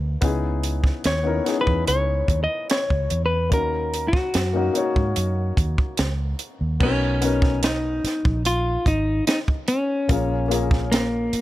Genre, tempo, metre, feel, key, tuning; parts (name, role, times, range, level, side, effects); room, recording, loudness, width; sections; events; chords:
lush 1970s-style soul; 73 BPM; 4/4; straight; A4 = 442 Hz
dark baby grand piano; accompaniment; 0.0-11.4 s; A#3 to C#5; -28 LUFS; left 5 dB
vintage muted fingered electric bass; bass; 0.0-11.4 s; G#1 to G#2; -24 LUFS; right 1 dB
compact cocktail drum kit; drums; 0.2-11.4 s; crash cymbal, hi-hat, kick drum, snare drum; -22 LUFS; right 1 dB
semi-hollow electric guitar; melody; 1.1-11.4 s; A#3 to D#5; -24 LUFS; left 1 dB
little or no reverb; -20 LUFS; side -15 dB against mid
0.0-6.8 A section; 6.8-11.4 B section
clean electric guitar solo 0.0-6.8
0.2 C#m9; 3.5 D#m7; 6.8 Bmaj9; 10.1 A#m7